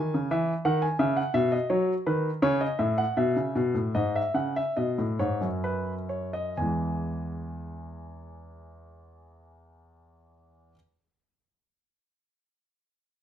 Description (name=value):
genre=classical, baroque-style two-part invention for grand piano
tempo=62-90 BPM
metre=4/4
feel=straight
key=E major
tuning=A4 = 440 Hz
part: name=warm grand piano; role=solo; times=0.0-10.7 s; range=E2 to G#5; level=-25 LUFS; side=equal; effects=none
room=moderate large studio reverb, RT60 0.9 s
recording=minimal, uncompressed stereo recording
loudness=-25 LUFS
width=side -10 dB against mid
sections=0.0-6.6 A section; 6.6-10.4 B section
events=slowing down 0.0-6.6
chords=0.3 C#m; 1.7 F#m7; 3.2 E; 4.8 B; 6.6 E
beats=| 0.31 0.99 1.69 2.42 | 3.17 3.95 4.77 5.64 | 6.58 7.54 8.51 9.47